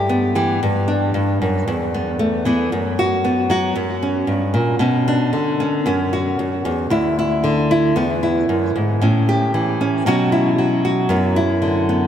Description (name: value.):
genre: acoustic folk duo or small band.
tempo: 115 BPM.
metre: 4/4.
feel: straight.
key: B minor.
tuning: A4 = 445 Hz.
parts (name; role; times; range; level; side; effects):
nylon-string guitar; solo; 0.0-12.1 s; D2 to G4; -16 LUFS; equal; analog delay.
room: wet huge ambient reverb, RT60 4.8 s.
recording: dreamy mix soaked in reverb.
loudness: -16 LUFS.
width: side -9 dB against mid.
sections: 0.0-4.8 A section; 4.8-12.1 B section.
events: none.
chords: 0.0 Em/G; 0.6 G5; 1.7 Esus4; 2.7 F#sus4; 3.8 F#; 4.8 Bmadd9; 5.9 F#5; 6.9 Dsus2; 8.0 E; 9.0 A7; 10.1 Bsus2; 11.1 Bm/F#.